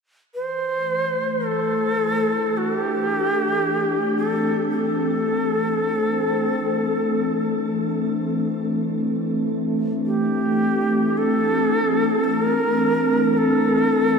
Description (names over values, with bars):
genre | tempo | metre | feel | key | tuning
dark ambient drone | free time | none | none | A phrygian | A4 = 440 Hz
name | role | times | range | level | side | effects
bright reedy shakuhachi | melody | 0.3-14.2 s | G4 to C5 | -22 LUFS | equal | shimmer reverb, ping-pong delay
sweeping resonant pad | sustained chords | 0.3-14.2 s | E3 to D4 | -22 LUFS | equal | wide subtle chorus, shimmer reverb
room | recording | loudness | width
wet cathedral reverb, RT60 6.3 s | none | -19 LUFS | side -5 dB against mid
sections
0.3-14.2 A section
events
none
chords
0.3 Am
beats
free time